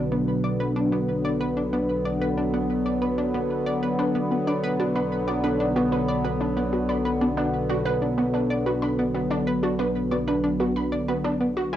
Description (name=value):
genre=ambient, sequencer-driven space music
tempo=93 BPM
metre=4/4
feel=straight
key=B minor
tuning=A4 = 441 Hz
part: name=sweeping resonant pad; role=sustained chords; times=0.0-11.8 s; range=D3 to E4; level=-24 LUFS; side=equal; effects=chorus, cassette tape
part: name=analog pluck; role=riff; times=0.0-11.8 s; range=B3 to G#5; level=-30 LUFS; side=equal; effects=chorus, cassette tape, tape echo
part: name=analog drone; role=bass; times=0.0-11.8 s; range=B1 to E2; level=-33 LUFS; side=equal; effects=chorus
part: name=wide unison pluck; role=arpeggios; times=4.0-11.8 s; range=B3 to B5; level=-29 LUFS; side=right 1 dB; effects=auto-pan, cassette tape, tape echo
room=wet small room ambience, RT60 0.5 s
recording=home recording on cassette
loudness=-22 LUFS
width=side -11 dB against mid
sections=0.0-11.8 A section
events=none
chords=0.0 Bm